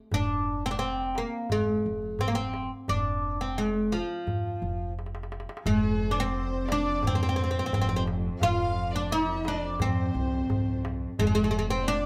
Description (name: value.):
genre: Arabic maqam ensemble.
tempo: 87 BPM.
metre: 4/4.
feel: straight.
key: F maqam rast.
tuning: A4 = 439 Hz.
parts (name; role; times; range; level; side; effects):
oud; melody; 0.1-12.1 s; F3 to F4; -30 LUFS; equal; plate reverb.
upright bass; bass; 0.1-12.1 s; F1 to F2; -35 LUFS; equal; none.
darbuka; percussion; 0.1-12.0 s; none; -35 LUFS; equal; none.
rich chamber violin section; second line; 5.7-12.1 s; Ab4+50c to F5; -40 LUFS; equal; slapback echo.
rich cello; drone; 5.7-12.1 s; F2; -40 LUFS; equal; none.
room: moderate small room reverb, RT60 0.5 s.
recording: none.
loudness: -28 LUFS.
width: mono.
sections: 0.0-5.7 A section; 5.7-12.1 B section.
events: drum fill 5.0-5.7.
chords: none.